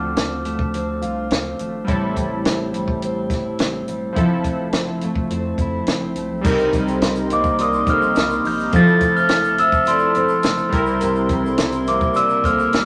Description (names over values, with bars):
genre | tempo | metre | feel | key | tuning
indie pop, bedroom pop | 105 BPM | 4/4 | straight | F major | A4 = 438 Hz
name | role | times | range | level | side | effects
glockenspiel with rubber mallets | melody | 0.0-1.0, 7.3-12.9 s | C6 to A6 | -22 LUFS | equal | none
picked steel-string acoustic guitar | accompaniment | 0.0-12.9 s | A2 to F4 | -25 LUFS | equal | vibrato effect
warm analog keys | accompaniment | 0.0-12.9 s | F3 to Bb4 | -28 LUFS | equal | chorus
round analog bass | bass | 0.0-12.9 s | E1 to F2 | -36 LUFS | equal | none
compact cocktail drum kit | drums | 0.2-12.9 s | crash cymbal, hi-hat, kick drum, snare drum | -25 LUFS | equal | none
vibraphone with soft mallets | second line | 6.4-12.6 s | F4 to E5 | -26 LUFS | equal | none
hollow soft pad | sustained chords | 6.4-12.9 s | E4 to C6 | -33 LUFS | equal | chorus
tube shaker | percussion | 6.4-12.9 s | none | -50 LUFS | equal | none
room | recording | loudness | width
wet studio reverb, RT60 0.7 s | none | -19 LUFS | mono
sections
0.0-6.4 A section; 6.4-12.9 B section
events
none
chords
0.0 Dm7; 1.9 Am7; 4.2 Fmaj7; 6.4 Cm7; 8.7 Fmaj7; 10.7 C7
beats
0.16 0.73 1.30 | 1.88 2.45 3.02 3.59 | 4.16 4.73 5.30 5.88 | 6.45 7.02 7.59 8.16 | 8.73 9.30 9.87 10.45 | 11.02 11.59 12.16 12.73